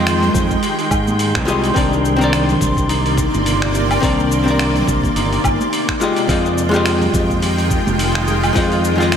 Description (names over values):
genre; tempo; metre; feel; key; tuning
sunset chillout; 106 BPM; 4/4; swing 57% on 16ths; C minor; A4 = 439 Hz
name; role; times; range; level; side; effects
archtop guitar, miked and amplified; accompaniment; 0.0-9.2 s; Eb3 to G5; -20 LUFS; moving between left 4 dB and right 3 dB; auto-pan, ping-pong delay
shimmering ambient pad; sustained chords; 0.0-9.2 s; C3 to G5; -21 LUFS; equal; chorus, built-in reverb
concert harp; arpeggios; 0.0-9.2 s; D4 to Ab4; -24 LUFS; left 4 dB; ping-pong delay
modern bright fingered electric bass; bass; 0.0-9.2 s; F1 to Ab2; -19 LUFS; equal; none
wind-like tuned noise texture; texture; 0.0-9.2 s; C6; -26 LUFS; right 2 dB; built-in reverb, analog chorus
dusty soul sampler-style drum kit; drums; 0.1-9.2 s; finger snaps, hi-hat, shaker, woodblock; -24 LUFS; equal; overdrive
congas; percussion; 0.2-8.0 s; none; -28 LUFS; right 3 dB; none
electronic kick drum; drums; 0.3-8.7 s; none; -22 LUFS; right 1 dB; overdrive
room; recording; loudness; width
wet lush hall reverb, RT60 1.9 s, digital ambience; dreamy mix soaked in reverb; -14 LUFS; side -8 dB against mid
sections
0.0-9.2 A section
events
none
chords
0.0 Fm9; 1.8 Cm9; 6.0 Fm9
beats
0.07 0.63 1.20 | 1.76 2.33 2.90 3.46 | 4.03 4.59 5.16 5.73 | 6.29 6.86 7.42 7.99 | 8.56 9.12